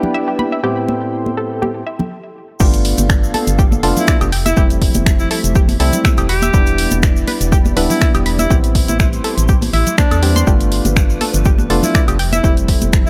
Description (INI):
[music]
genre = deep house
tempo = 122 BPM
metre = 4/4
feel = swing 54% on 16ths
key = A minor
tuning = A4 = 439 Hz
[part]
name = hollow soft pad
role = sustained chords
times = 0.0-13.1 s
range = F3 to C6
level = -30 LUFS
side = equal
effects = ensemble chorus, sidechain pumping
[part]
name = percussive organ stab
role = stabs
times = 0.0-13.1 s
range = A2 to G4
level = -23 LUFS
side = equal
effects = chorus, sidechain pumping, tape echo
[part]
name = congas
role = percussion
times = 0.0-12.9 s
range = none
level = -25 LUFS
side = equal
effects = none
[part]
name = soft string machine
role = texture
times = 0.0-2.1 s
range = none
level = barely audible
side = none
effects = none
[part]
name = analog pluck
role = arpeggios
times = 0.1-12.5 s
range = G4 to C6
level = -26 LUFS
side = equal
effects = chorus, sidechain pumping, tape echo
[part]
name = organ-like FM bass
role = bass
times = 2.6-13.1 s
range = D1 to E2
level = -20 LUFS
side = equal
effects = sidechain pumping
[part]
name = electronic kick drum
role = drums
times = 2.6-13.0 s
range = none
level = -16 LUFS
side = equal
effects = overdrive
[part]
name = punchy analog drum machine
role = drums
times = 2.6-13.0 s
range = crash cymbal, finger snaps, hi-hat, woodblock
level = -24 LUFS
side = equal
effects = overdrive
[part]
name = egg shaker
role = percussion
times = 2.6-13.1 s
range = none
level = -29 LUFS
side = equal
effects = none
[part]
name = clear alto saxophone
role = melody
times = 4.0-13.1 s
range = D4 to G4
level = -24 LUFS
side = equal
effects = vintage 12-bit sampler grit, tape echo
[sound]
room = little or no reverb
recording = none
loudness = -14 LUFS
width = mono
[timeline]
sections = 0.0-2.6 A section; 2.6-13.1 B section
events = stop 2.1-2.6; drop 2.6-13.1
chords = 0.0 Em7; 0.6 Am7; 2.6 G9; 4.3 Fmaj9; 6.3 Em7; 8.5 Am7; 10.5 G9; 12.2 Fmaj9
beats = 0.14 | 0.64 1.13 1.62 2.11 | 2.60 3.10 3.59 4.08 | 4.57 5.06 5.55 6.05 | 6.54 7.03 7.52 8.01 | 8.51 9.00 9.49 9.98 | 10.47 10.96 11.46 11.95 | 12.44 12.93